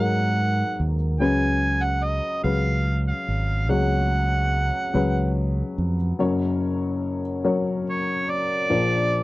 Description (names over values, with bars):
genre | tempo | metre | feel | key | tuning
folk | 48 BPM (dotted quarters) | 6/8 | straight | unclear | A4 = 439 Hz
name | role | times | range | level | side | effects
overdriven harmonica | melody | 0.0-9.2 s | Db5 to Ab5 | -25 LUFS | right 2 dB | none
dark upright piano | accompaniment | 0.0-9.2 s | Gb1 to D5 | -24 LUFS | left 2 dB | none
fingered electric bass | bass | 0.0-6.1 s | Ab1 to Ab2 | -23 LUFS | right 1 dB | none
room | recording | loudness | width
little or no reverb | dry, close 1970s-style studio recording | -21 LUFS | side -18 dB against mid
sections
0.0-6.2 A section; 6.2-9.2 B section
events
none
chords
0.0 Abm7; 1.2 Db7sus4; 6.2 Gb; 8.7 Bb